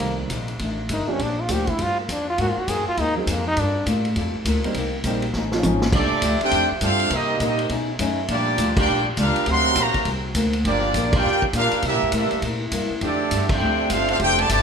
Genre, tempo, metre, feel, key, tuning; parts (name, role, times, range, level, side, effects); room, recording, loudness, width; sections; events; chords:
jazz, big band swing; 203 BPM; 4/4; swing 63% on 8ths; Bb major, F major from 5.9 s; A4 = 440 Hz
bright trombone; melody; 0.0-3.9 s; Gb3 to Ab4; -24 LUFS; equal
picked old ladder-braced acoustic guitar; accompaniment; 0.0-14.6 s; F2 to A4; -29 LUFS; left 4 dB
warm grand piano; accompaniment; 0.0-5.9 s; Eb3 to Bb4; -28 LUFS; right 2 dB
upright bass; bass; 0.0-14.6 s; F1 to C3; -25 LUFS; equal
vintage drum kit; drums; 0.0-14.6 s; crash cymbal, hi-hat, kick drum, ride cymbal, snare drum, toms; -27 LUFS; equal
bright trumpet section; melody; 5.9-14.6 s; Bb3 to C6; -21 LUFS; equal
bright trombone section; second line; 5.9-14.6 s; C3 to G4; -27 LUFS; right 6 dB
moderate recital hall reverb, RT60 1.6 s; minimal, uncompressed stereo recording; -19 LUFS; side -6 dB against mid
0.0-5.9 A section; 5.9-14.6 B section
trombone solo 0.0-5.9; drum fill 5.3-5.9; band accent 8.7, 11.1, 13.5
0.0 Cm7; 0.6 F13; 1.2 Bb69; 2.4 Ab9; 3.6 Gm9; 4.8 Cm7; 5.3 F7alt; 5.9 F69; 7.1 Cm7; 7.7 B9; 8.3 Bb6; 9.5 D7alt; 10.7 Gm7; 11.8 C9; 13.0 F69